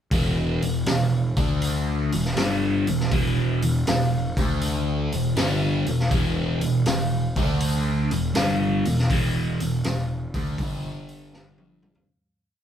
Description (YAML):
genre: blues rock power trio and southern rock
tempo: 80 BPM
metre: 4/4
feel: swing 67% on 8ths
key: unclear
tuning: A4 = 440 Hz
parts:
  - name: overdriven semi-hollow guitar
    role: riff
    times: 0.1-12.1 s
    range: E2 to D4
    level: -23 LUFS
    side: equal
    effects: phaser
  - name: fuzz picked electric bass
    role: bass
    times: 0.1-12.0 s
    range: E1 to D2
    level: -29 LUFS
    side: equal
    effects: overdrive
  - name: raw garage drum kit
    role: drums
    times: 0.1-12.1 s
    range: hi-hat, kick drum, snare drum, toms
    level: -26 LUFS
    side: equal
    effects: none
room: moderate studio reverb, RT60 0.8 s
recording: band playing live in one room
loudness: -21 LUFS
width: side -9 dB against mid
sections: 0.1-12.1 riff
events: fade-out 9.1-12.1; drum fill 11.3-12.1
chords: 0.1 E5; 1.2 D5; 2.0 E5; 4.2 D5; 5.0 E5; 7.2 D5; 8.0 E5; 10.6 G5